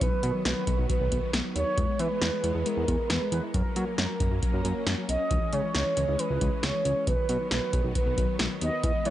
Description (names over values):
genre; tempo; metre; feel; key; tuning
synth-pop; 136 BPM; 4/4; straight; unclear; A4 = 443 Hz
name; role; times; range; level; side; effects
mellow horn-like synth lead; melody; 0.0-9.1 s; A#4 to D#5; -30 LUFS; right 2 dB; chorus, analog delay, shimmer reverb
string machine, violas; sustained chords; 0.0-9.1 s; D#3 to C#4; -36 LUFS; equal; ensemble chorus, shimmer reverb
soft round pluck; arpeggios; 0.0-9.1 s; D#3 to G#4; -36 LUFS; left 5 dB; chorus, analog delay
fat analog bass; bass; 0.0-9.1 s; B1 to F#3; -30 LUFS; equal; none
electro analog drum machine; drums; 0.0-9.1 s; hi-hat, kick drum, snare drum; -29 LUFS; equal; none
room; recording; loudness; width
light reverb; nothing above 10.6 kHz; -25 LUFS; side -13 dB against mid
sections
0.0-9.1 A section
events
none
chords
0.0 B; 1.8 E; 3.5 F#; 5.3 C#m; 7.1 B